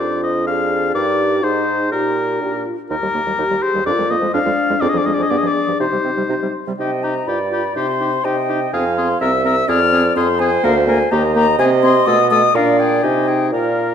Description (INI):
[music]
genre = quick classical-period movement for wind quintet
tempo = 124 BPM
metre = 2/4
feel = straight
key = Eb major, C minor from 4.8 s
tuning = A4 = 436 Hz
[part]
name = hollow concert flute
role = melody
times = 0.0-13.9 s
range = G4 to F6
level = -21 LUFS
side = left 8 dB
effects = none
[part]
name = warm oboe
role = second line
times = 0.0-13.9 s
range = G4 to F5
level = -22 LUFS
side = left 3 dB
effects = none
[part]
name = clear clarinet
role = accompaniment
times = 0.0-13.9 s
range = F3 to F5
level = -23 LUFS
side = right 6 dB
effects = none
[part]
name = mellow French horn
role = accompaniment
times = 0.0-13.9 s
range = A3 to Ab4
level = -22 LUFS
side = left 1 dB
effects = none
[part]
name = warm bassoon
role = bass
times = 0.0-13.9 s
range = C2 to C3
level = -20 LUFS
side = right 2 dB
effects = none
[sound]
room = wet recital hall reverb, RT60 1.5 s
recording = dark, warm production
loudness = -14 LUFS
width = side -8 dB against mid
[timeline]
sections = 0.0-6.8 A section; 6.8-13.9 B section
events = none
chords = 0.0 Fm6; 0.9 Eb/G; 1.4 Ab; 1.9 Eb/Bb; 2.4 Bb; 2.9 Eb; 3.9 Bb7/F; 4.8 Ddim/F; 5.3 G7(no3); 5.8 Cm; 7.3 G7; 7.8 Cm; 8.7 Fm; 9.2 C7; 9.7 Fm; 10.6 Bb/D; 11.1 Eb; 11.6 Ab/C; 12.1 B7; 12.6 Bb; 13.0 Cm